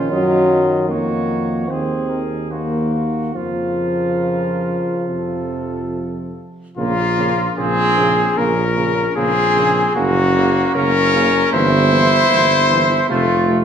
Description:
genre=classical, brass quintet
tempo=68-78 BPM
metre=4/4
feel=rubato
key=Bb minor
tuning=A4 = 440 Hz
part: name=mellow trumpet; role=melody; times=0.0-13.6 s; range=F4 to Eb5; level=-19 LUFS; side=left 4 dB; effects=none
part: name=warm trumpet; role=second line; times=0.0-13.6 s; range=A3 to Ab4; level=-23 LUFS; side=right 6 dB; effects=none
part: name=clear trombone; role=accompaniment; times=0.0-13.6 s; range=C3 to E3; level=-27 LUFS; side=right 4 dB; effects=none
part: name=dark French horn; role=accompaniment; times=0.0-13.6 s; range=F3 to C4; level=-22 LUFS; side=left 1 dB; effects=none
part: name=mellow tuba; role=bass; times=0.0-13.6 s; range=F1 to Gb2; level=-21 LUFS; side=right 3 dB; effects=none
room=wet recital hall reverb, RT60 1.5 s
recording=none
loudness=-14 LUFS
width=side -8 dB against mid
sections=0.0-6.8 A section; 6.8-13.6 B section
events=none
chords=0.1 Gb; 1.7 Ebm6; 3.4 Bbm/F; 5.1 F; 6.8 Bbm; 10.0 Gb; 11.5 C7/G; 13.1 F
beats=| 0.12 0.90 1.70 2.52 | 3.36 4.24 5.09 5.93 | 6.77 7.57 8.36 9.16 | 9.96 10.75 11.53 12.31 | 13.10

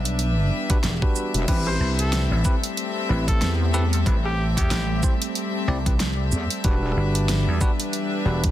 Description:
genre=glitch hop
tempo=93 BPM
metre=4/4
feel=swing 58% on 16ths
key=A dorian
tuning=A4 = 441 Hz
part: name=warbly tape-like pad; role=sustained chords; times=0.0-8.5 s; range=E3 to D4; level=-32 LUFS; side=equal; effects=chorus, built-in reverb, phaser, vintage 12-bit sampler grit, sidechain pumping
part: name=vintage slap bass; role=bass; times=0.0-8.5 s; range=E1 to E2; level=-23 LUFS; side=equal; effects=none
part: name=rich chamber string section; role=texture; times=0.0-8.5 s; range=C4 to E5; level=-30 LUFS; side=left 2 dB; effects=sidechain pumping
part: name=pop drum kit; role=drums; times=0.1-8.5 s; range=crash cymbal, hi-hat, rim click, shaker, snare drum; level=-28 LUFS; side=right 1 dB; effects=overdrive
part: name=bell-like tine electric piano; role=stabs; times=0.7-8.5 s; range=C4 to D5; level=-30 LUFS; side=equal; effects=sidechain pumping, ping-pong delay
part: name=electronic kick drum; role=drums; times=0.7-8.5 s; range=none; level=-22 LUFS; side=equal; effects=overdrive
part: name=wobble bass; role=bass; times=1.3-6.9 s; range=E1 to E2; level=-22 LUFS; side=equal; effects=chorus, tube saturation
part: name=clear trumpet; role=melody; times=1.7-5.0 s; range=G4 to C5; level=-32 LUFS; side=equal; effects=ping-pong delay
room=little or no reverb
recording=dense, heavily limited modern master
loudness=-20 LUFS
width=side -13 dB against mid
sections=0.0-8.5 A section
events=none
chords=0.0 Em7; 1.5 Am7; 6.6 Em7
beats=0.19 0.84 | 1.48 2.13 2.77 3.42 | 4.06 4.71 5.35 6.00 | 6.64 7.29 7.93

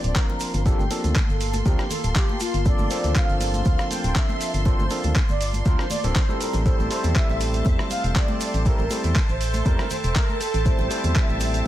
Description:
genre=deep house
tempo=120 BPM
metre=4/4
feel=swing 54% on 16ths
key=G dorian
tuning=A4 = 440 Hz
part: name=mellow horn-like synth lead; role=melody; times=0.0-11.7 s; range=F4 to G5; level=-30 LUFS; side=equal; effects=ensemble chorus, dub echo
part: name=warm analog pad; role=sustained chords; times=0.0-11.7 s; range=Bb3 to C6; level=-34 LUFS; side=equal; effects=chorus, sidechain pumping
part: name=overdriven tine electric piano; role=stabs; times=0.0-11.7 s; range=F3 to C5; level=-30 LUFS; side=equal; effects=sidechain pumping
part: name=organ-like FM bass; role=bass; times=0.0-11.6 s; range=D1 to E2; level=-24 LUFS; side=equal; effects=sidechain pumping
part: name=dusty soul sampler-style drum kit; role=drums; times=0.0-11.6 s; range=handclaps, hi-hat, rim click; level=-30 LUFS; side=right 1 dB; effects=none
part: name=shekere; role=percussion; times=0.0-11.6 s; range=none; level=-39 LUFS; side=left 3 dB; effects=none
part: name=sub drop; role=sound effects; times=0.0-0.7 s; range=none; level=barely audible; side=none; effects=none
part: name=string machine, violins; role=texture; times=0.0-11.7 s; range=A5 to C6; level=-36 LUFS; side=equal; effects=ensemble chorus, sidechain pumping
part: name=electronic kick drum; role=drums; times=0.2-11.3 s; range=none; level=-21 LUFS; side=equal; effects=overdrive
part: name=congas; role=percussion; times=0.3-11.6 s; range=none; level=-35 LUFS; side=right 1 dB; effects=none
room=digital ambience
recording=none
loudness=-20 LUFS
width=side -13 dB against mid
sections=0.0-11.7 A section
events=impact 0.0-0.7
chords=0.0 Gm11; 6.4 Am7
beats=0.16 | 0.66 1.16 1.66 2.16 | 2.66 3.16 3.66 4.16 | 4.66 5.16 5.66 6.16 | 6.66 7.16 7.66 8.16 | 8.66 9.16 9.66 10.16 | 10.66 11.16 11.66

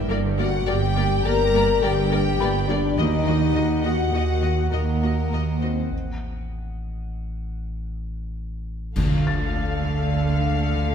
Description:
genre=cinematic, suspense film score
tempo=102 BPM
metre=5/4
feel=straight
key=unclear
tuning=A4 = 440 Hz
part: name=dark studio violin section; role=second line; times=0.0-10.9 s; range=A4 to Bb5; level=-31 LUFS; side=left 2 dB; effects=none
part: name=drifting glass-harmonics texture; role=sustained chords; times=0.0-10.9 s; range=G4 to G5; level=-35 LUFS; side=left 2 dB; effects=chorus, built-in reverb
part: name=mellow French horn section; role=sustained chords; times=0.0-10.9 s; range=F3 to Bb4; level=-25 LUFS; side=left 6 dB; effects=none
part: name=dark studio double bass section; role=bass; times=0.0-10.9 s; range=G1 to D#2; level=-27 LUFS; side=right 6 dB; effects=none
part: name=warm studio cello section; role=bass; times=0.0-10.9 s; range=D#2 to D3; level=-28 LUFS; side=right 4 dB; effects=none
part: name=saturated sub bass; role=drone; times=0.0-10.9 s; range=G1 to D#2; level=-28 LUFS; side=left 1 dB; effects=none
part: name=felt-muted upright piano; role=texture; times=0.0-10.9 s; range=B4 to A6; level=-36 LUFS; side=left 2 dB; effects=none
part: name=warm studio violin section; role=melody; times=0.1-10.9 s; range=D5 to F5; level=-32 LUFS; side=left 6 dB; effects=none
part: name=warm studio viola section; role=accompaniment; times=0.1-10.9 s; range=A3 to Bb4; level=-33 LUFS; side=right 2 dB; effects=none
part: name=warm studio cello section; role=riff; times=0.1-10.9 s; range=G2 to D#4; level=-32 LUFS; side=right 2 dB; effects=none
part: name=clash cymbals and concert bass drum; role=percussion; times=9.0-10.1 s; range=none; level=-29 LUFS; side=left 1 dB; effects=none
part: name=timpani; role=percussion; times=9.0-9.8 s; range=D3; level=-28 LUFS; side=right 1 dB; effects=none
room=wet scoring stage reverb, RT60 1.6 s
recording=minimal, uncompressed stereo recording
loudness=-19 LUFS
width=side -7 dB against mid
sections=0.0-9.0 A section; 9.0-10.9 B section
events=break 5.9-9.0; band accent 9.0-9.6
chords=0.0 Gm; 3.0 D#m; 5.9 N.C.; 9.0 Dm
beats=| 0.10 0.67 1.25 1.83 2.40 | 2.99 3.56 4.14 4.72 5.32 | 5.92 6.54 7.15 7.75 8.36 | 8.96 9.55 10.14 10.72

